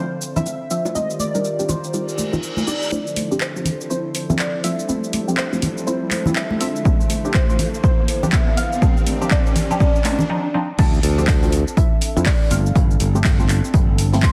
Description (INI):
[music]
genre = deep house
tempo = 122 BPM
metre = 4/4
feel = swing 60% on 16ths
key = D minor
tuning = A4 = 440 Hz
[part]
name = soft round pluck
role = melody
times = 0.0-14.3 s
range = C5 to C6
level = -30 LUFS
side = equal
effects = ensemble chorus, analog delay
[part]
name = warm analog pad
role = sustained chords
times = 0.0-14.3 s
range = D3 to D5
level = -32 LUFS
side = equal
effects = chorus, sidechain pumping
[part]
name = filtered dub chord stab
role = stabs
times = 0.0-14.2 s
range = F3 to Bb4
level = -28 LUFS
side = equal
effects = phaser, subtle chorus, sidechain pumping, tape echo
[part]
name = house drum kit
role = drums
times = 0.2-14.3 s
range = cabasa, crash cymbal, handclaps, hi-hat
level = -29 LUFS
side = equal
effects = none
[part]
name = congas and bongos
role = percussion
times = 0.4-10.3 s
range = none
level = -27 LUFS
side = equal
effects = sidechain pumping on perc
[part]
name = reverse cymbal and riser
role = sound effects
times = 2.1-10.3 s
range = none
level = -31 LUFS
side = equal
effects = none
[part]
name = electronic kick drum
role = drums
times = 6.9-14.3 s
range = none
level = -19 LUFS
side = equal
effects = none
[part]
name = modern bright fingered electric bass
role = bass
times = 10.8-14.3 s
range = G1 to F2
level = -21 LUFS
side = equal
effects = tube saturation, sidechain pumping
[part]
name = gated 80s drum kit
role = drums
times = 10.8-14.3 s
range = hi-hat, snare drum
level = -39 LUFS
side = equal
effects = none
[sound]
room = light reverb, digital ambience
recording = dense, heavily limited modern master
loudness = -19 LUFS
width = mono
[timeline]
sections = 0.0-2.9 A section; 2.9-10.8 B section; 10.8-14.3 C section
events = reverse cymbal 2.1-2.9; build-up 2.9-10.8; riser 2.9-10.3; break 10.3-10.8; drop 10.8-14.3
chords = 0.0 Dm9; 1.0 Ebmaj13; 2.9 Dm9; 4.6 G13sus4; 6.6 Dm9; 8.8 Ebmaj13; 10.8 Dm9; 12.5 G13sus4